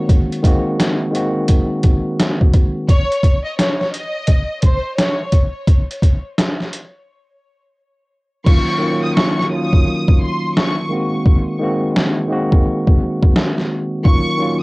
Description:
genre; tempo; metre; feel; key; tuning
hip hop, boom-bap hip-hop; 86 BPM; 4/4; swing 63% on 16ths; Eb dorian; A4 = 440 Hz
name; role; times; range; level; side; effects
tine electric piano; accompaniment; 0.0-2.9, 8.4-14.6 s; Eb3 to Gb4; -18 LUFS; equal; medium stereo tremolo, cassette tape, high-pass filter, low-pass filter
trip hop sampler-style drum kit; drums; 0.1-14.3 s; crash cymbal, hi-hat, kick drum, snare drum; -14 LUFS; equal; overdrive, cassette tape
clear symphonic violin section; melody; 2.9-14.6 s; C5 to Eb6; -22 LUFS; left 1 dB; high-pass filter, low-pass filter, cassette tape, tape echo
room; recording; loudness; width
little or no reverb; home recording on cassette; -14 LUFS; side -24 dB against mid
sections
0.0-8.5 A section; 8.5-14.6 B section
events
break 2.9-8.5; hi-hats muted 8.5-14.6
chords
0.0 Ab7; 2.9 N.C.; 8.5 Ebm7; 10.9 Ab7; 14.0 Ebm7

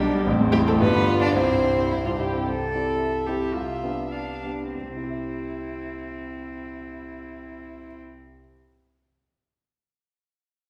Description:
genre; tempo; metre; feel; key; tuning
quick classical-period movement for piano quartet; 94-117 BPM; 2/4; rubato; C major; A4 = 439 Hz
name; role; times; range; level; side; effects
dark violin; melody; 0.0-8.0 s; E4 to F5; -32 LUFS; equal; none
dark violin; second line; 0.0-2.5 s; C4 to G4; -30 LUFS; equal; none
rich cello; second line; 0.0-8.0 s; G3 to A4; -32 LUFS; equal; none
warm grand piano; accompaniment; 0.0-8.7 s; A1 to E5; -27 LUFS; equal; none
room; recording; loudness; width
wet recital hall reverb, RT60 1.4 s; heard from further back in the room; -24 LUFS; mono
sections
0.0-2.5 A section; 2.5-4.7 B section; 4.7-7.2 C section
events
slowing down 1.9-4.7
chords
0.3 Am; 0.8 G7; 1.4 C; 3.5 G7/C; 4.7 C

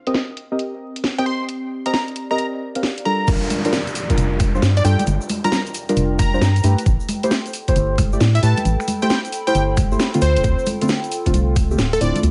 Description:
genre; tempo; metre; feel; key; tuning
UK garage, two-step garage; 134 BPM; 4/4; swing 65% on 16ths; unclear; A4 = 440 Hz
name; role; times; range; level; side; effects
warbly tape-like pad; texture; 0.8-12.3 s; C4 to B5; -34 LUFS; equal; chorus, built-in reverb, sidechain pumping
deep mellow chord stab; stabs; 0.1-12.3 s; D3 to F5; -25 LUFS; equal; analog chorus, cassette tape
garage drum kit; drums; 0.1-12.3 s; congas, crash cymbal, finger snaps, hi-hat, snare drum; -26 LUFS; equal; studio ambience
plucky unison lead; melody; 1.2-12.2 s; A4 to C6; -26 LUFS; equal; dub echo
organ-like FM bass; bass; 3.3-12.3 s; D1 to A2; -20 LUFS; equal; none
electronic kick drum; drums; 3.3-11.7 s; none; -22 LUFS; equal; overdrive, studio ambience
tube shaker; percussion; 3.3-12.3 s; none; -39 LUFS; equal; none
downlifter; sound effects; 3.3-6.9 s; none; -33 LUFS; equal; none
room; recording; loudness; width
digital ambience; vinyl crackle, low-pass filter, nothing above 10.8 kHz; -19 LUFS; mono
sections
0.0-3.3 A section; 3.3-12.3 B section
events
drop 3.3-12.3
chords
0.0 Cm7; 3.3 Gm7; 6.9 Am7; 10.2 Dm7

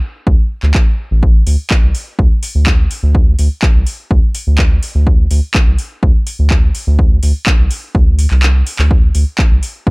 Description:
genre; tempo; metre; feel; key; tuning
acid house; 125 BPM; 4/4; straight; unclear; A4 = 440 Hz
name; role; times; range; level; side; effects
round analog bass; bass; 0.3-9.9 s; A1 to D2; -12 LUFS; equal; tube saturation, sidechain pumping
electronic kick drum; drums; 0.3-9.9 s; none; -11 LUFS; equal; none
electro analog drum machine; drums; 0.6-9.7 s; handclaps, hi-hat; -20 LUFS; equal; overdrive
room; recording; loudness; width
little or no reverb; none; -10 LUFS; side -28 dB against mid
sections
0.0-9.9 A section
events
kick drops out 8.4-8.9; drum fill 8.4-8.9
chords
none

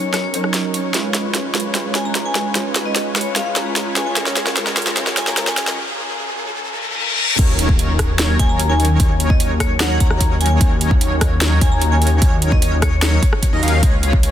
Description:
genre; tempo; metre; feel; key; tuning
future bass; 149 BPM; 4/4; half-time; Eb minor; A4 = 438 Hz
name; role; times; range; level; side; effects
vibraphone with medium hard mallets; melody; 0.0-5.8, 8.4-13.2 s; Db5 to Bb5; -26 LUFS; left 2 dB; sidechain pumping, digital delay
mellow tine electric piano; accompaniment; 0.0-5.8 s; Gb3 to Cb5; -29 LUFS; right 6 dB; fast stereo tremolo, sidechain pumping, digital delay
shimmering ambient pad; sustained chords; 0.0-14.3 s; Db3 to Cb5; -31 LUFS; left 1 dB; none
big bright polysynth; riff; 0.0-14.3 s; Gb3 to F5; -25 LUFS; right 1 dB; chorus, sidechain pumping, digital delay
riser, reverse cymbal and impact; sound effects; 0.0-9.0 s; none; -26 LUFS; left 2 dB; none
trap drum kit; drums; 0.1-14.3 s; crash cymbal, hi-hat, rim click, snare drum; -21 LUFS; equal; soft clipping on snare, high-pass filter on snare, high-pass filter on hats, high-pass filter on cymbals
airy dreamy lead; arpeggios; 7.4-14.3 s; Db5 to F5; -26 LUFS; equal; chorus, sidechain pumping, digital delay
wide detuned saw bass; bass; 7.4-14.3 s; Db2 to Eb2; -17 LUFS; equal; chorus, sidechain pumping
electronic kick drum; drums; 7.4-14.2 s; none; -16 LUFS; equal; none
room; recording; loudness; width
light reverb, digital ambience; dense, heavily limited modern master, high-pass filter; -15 LUFS; side -11 dB against mid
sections
0.0-7.4 A section; 7.4-14.3 B section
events
build-up 0.0-7.4; drum fill 0.0-5.8; riser 0.0-7.4; filter sweep on analog polysynth 0.0-7.4; filter sweep 0.0-7.4; break 5.8-7.4; reverse cymbal 6.6-7.4; drop 7.4-14.3; impact 7.4-9.0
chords
0.0 Ebm7; 0.9 Db7; 4.2 Gbmaj7/Db; 7.4 Ebm7

